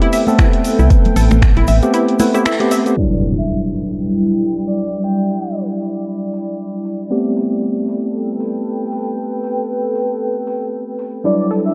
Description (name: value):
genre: deep house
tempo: 116 BPM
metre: 4/4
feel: swing 57% on 16ths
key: unclear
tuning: A4 = 440 Hz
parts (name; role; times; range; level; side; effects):
- analog pluck; arpeggios; 0.0-2.8, 11.5-11.6 s; E4 to E5; -24 LUFS; equal; chorus, sidechain pumping, analog delay
- bright tine electric piano; stabs; 0.0-11.7 s; F#3 to B4; -21 LUFS; equal; sidechain pumping, low-pass filter, analog delay
- punchy analog drum machine; drums; 0.0-11.6 s; crash cymbal, finger snaps, hi-hat; -28 LUFS; equal; vintage 12-bit sampler grit
- warbly tape-like pad; texture; 0.1-11.7 s; G3 to G5; -24 LUFS; equal; chorus, built-in reverb, phaser, sidechain pumping
- egg shaker; percussion; 0.1-3.0 s; none; -35 LUFS; equal; none
- congas; percussion; 0.3-2.3 s; none; -23 LUFS; equal; sidechain pumping on perc
- electronic kick drum; drums; 0.4-1.5 s; none; -15 LUFS; equal; overdrive, vintage 12-bit sampler grit
- organ-like FM bass; bass; 0.8-1.8 s; A1 to C2; -14 LUFS; equal; tube saturation, sidechain pumping
- breathy flute-like synth lead; melody; 3.0-5.6, 11.2-11.7 s; D5 to G5; -26 LUFS; equal; analog chorus, tape echo
- impact; sound effects; 3.0-5.0 s; none; -24 LUFS; equal; none
room: light reverb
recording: cassette tape, low-pass filter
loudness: -17 LUFS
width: mono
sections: 0.0-3.0 A section; 3.0-11.7 B section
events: break 1.9-3.0; band accent 2.5; impact 3.0-5.0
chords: 0.0 Am9; 3.0 Em9; 7.1 Am9